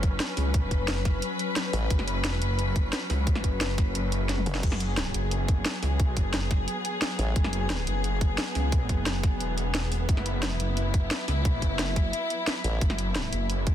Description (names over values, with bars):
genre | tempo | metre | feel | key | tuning
dark technical drum and bass | 176 BPM | 4/4 | straight | unclear | A4 = 440 Hz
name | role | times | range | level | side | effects
dark chamber string section | sustained chords | 0.0-13.7 s | F#3 to B4 | -32 LUFS | left 2 dB | sidechain pumping
wide detuned saw bass | bass | 0.0-13.7 s | E1 to C#2 | -28 LUFS | equal | chorus, overdrive, sidechain pumping
drum and bass drum kit | drums | 0.0-13.7 s | crash cymbal, hi-hat, snare drum, toms | -31 LUFS | equal | none
electronic kick drum | drums | 0.0-13.7 s | none | -24 LUFS | equal | none
formant-sweep wobble bass | bass | 1.7-1.9, 4.5-4.6, 7.2-7.3, 12.6-12.8 s | F#1 to A1 | -27 LUFS | equal | chorus
room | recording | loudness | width
light reverb, digital ambience | dense, heavily limited modern master | -24 LUFS | side -11 dB against mid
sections
0.0-13.7 A section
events
kick drops out 4.3-4.6; drum fill 4.3-4.6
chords
0.0 F#5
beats
0.20 | 0.54 0.88 1.22 1.56 | 1.91 2.25 2.59 2.93 | 3.27 3.61 3.95 4.29 | 4.63 4.97 5.32 5.66 | 6.00 6.34 6.68 7.02 | 7.36 7.70 8.04 8.38 | 8.72 9.06 9.41 9.75 | 10.09 10.43 10.77 11.11 | 11.45 11.79 12.13 12.47 | 12.81 13.16 13.50